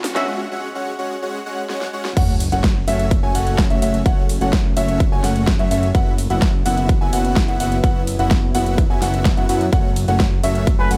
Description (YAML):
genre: EDM, festival progressive house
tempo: 127 BPM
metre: 4/4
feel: straight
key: F# minor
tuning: A4 = 440 Hz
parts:
  - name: lush unison pad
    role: sustained chords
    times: 0.1-11.0 s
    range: F#3 to E4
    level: -32 LUFS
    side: equal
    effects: none
  - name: fat analog bass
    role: bass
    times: 0.0-11.0 s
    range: F#1 to F#2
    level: -25 LUFS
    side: equal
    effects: sidechain pumping, high-pass filter
  - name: big-room dance drum kit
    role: drums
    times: 0.0-11.0 s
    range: crash cymbal, hi-hat, ride cymbal, snare drum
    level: -28 LUFS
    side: equal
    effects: overdrive, small room ambience
  - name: riser and sub drop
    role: sound effects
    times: 0.0-4.1 s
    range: none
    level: -30 LUFS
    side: equal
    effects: none
  - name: trumpet with plunger mute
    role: melody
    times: 0.2, 10.8-10.9 s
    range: B4 to E5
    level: -29 LUFS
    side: equal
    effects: digital delay
  - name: dense compressed supersaw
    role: riff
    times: 0.2-11.0 s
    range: G#3 to G#5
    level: -27 LUFS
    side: equal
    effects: sidechain pumping, digital delay
  - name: dark baby grand piano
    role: arpeggios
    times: 2.2-11.0 s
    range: E5 to G#5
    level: -27 LUFS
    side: equal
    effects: sidechain pumping, digital delay
  - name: electronic kick drum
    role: drums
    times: 2.2-10.8 s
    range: none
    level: -20 LUFS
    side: equal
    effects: overdrive, small room ambience
room: little or no reverb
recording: high-pass filter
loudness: -18 LUFS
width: mono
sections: 0.0-2.2 A section; 2.2-11.0 B section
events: build-up 0.0-2.2; drum fill 0.0, 1.7-2.2; riser 0.0; break 0.3-2.2; drop 2.2-11.0; impact 2.2-4.1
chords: 0.0 G#dim/F#; 2.2 F#m; 5.9 Bsus4/F#; 9.7 F#m